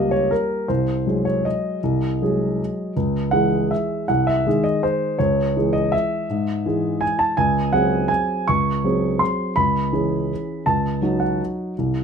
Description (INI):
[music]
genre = classical, piano waltz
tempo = 147-175 BPM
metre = 3/4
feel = rubato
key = C# minor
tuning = A4 = 440 Hz
[part]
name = warm concert grand piano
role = solo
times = 0.0-12.0 s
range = B#1 to C#6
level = -18 LUFS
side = equal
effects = none
[sound]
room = little or no reverb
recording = close, detailed microphones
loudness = -18 LUFS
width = side -6 dB against mid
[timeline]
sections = 0.0-12.0 A section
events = none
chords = 0.0 D#7/C#; 0.7 G#7/B#; 3.0 C#m; 4.1 G#/B#; 5.2 C#m; 7.4 G#7/C#; 9.6 C#m; 10.7 D#m7b5/C#